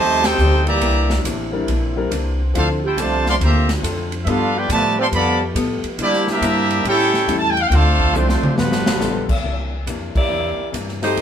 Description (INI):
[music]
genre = jazz, big band swing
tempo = 139 BPM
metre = 4/4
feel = swing 66% on 8ths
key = C major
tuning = A4 = 441 Hz
[part]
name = bright trumpet section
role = melody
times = 0.0-9.3 s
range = A3 to C6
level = -19 LUFS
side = right 1 dB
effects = none
[part]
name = clear trombone section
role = second line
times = 0.0-9.2 s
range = C3 to G4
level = -22 LUFS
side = right 3 dB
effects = none
[part]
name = archtop guitar, miked and amplified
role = accompaniment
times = 0.0-11.2 s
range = A2 to A4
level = -28 LUFS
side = left 4 dB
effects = none
[part]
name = mellow saxophone section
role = sustained chords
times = 0.0-9.4 s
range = C#3 to G4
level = -29 LUFS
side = left 1 dB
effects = none
[part]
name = upright bass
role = bass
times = 0.0-11.2 s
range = G1 to C3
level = -21 LUFS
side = equal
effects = none
[part]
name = swinging big-band drum kit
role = drums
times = 0.2-11.2 s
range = crash cymbal, hi-hat, kick drum, ride cymbal, snare drum, toms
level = -25 LUFS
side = equal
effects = none
[part]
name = warm concert grand piano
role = accompaniment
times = 1.5-11.2 s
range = F3 to Bb4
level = -26 LUFS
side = left 4 dB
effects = none
[part]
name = bright saxophone section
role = melody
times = 10.1-11.2 s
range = A3 to D5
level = -20 LUFS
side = equal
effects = none
[sound]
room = moderate studio reverb, RT60 0.6 s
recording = band playing live in one room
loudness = -16 LUFS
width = side -9 dB against mid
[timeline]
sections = 0.0-9.4 A section; 9.4-11.2 B section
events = band accent 0.2, 10.1; drum fill 8.1-9.0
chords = 0.0 F9; 0.8 C9; 2.5 Dm7; 4.3 G9; 6.0 C9; 6.8 A7; 7.7 Dm7; 8.6 G9; 9.4 C9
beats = 0.39 | 0.82 1.25 1.68 2.11 | 2.54 2.97 3.40 3.83 | 4.26 4.69 5.12 5.56 | 5.99 6.42 6.85 7.28 | 7.71 8.14 8.57 9.00 | 9.44 9.87 10.30 10.73 | 11.16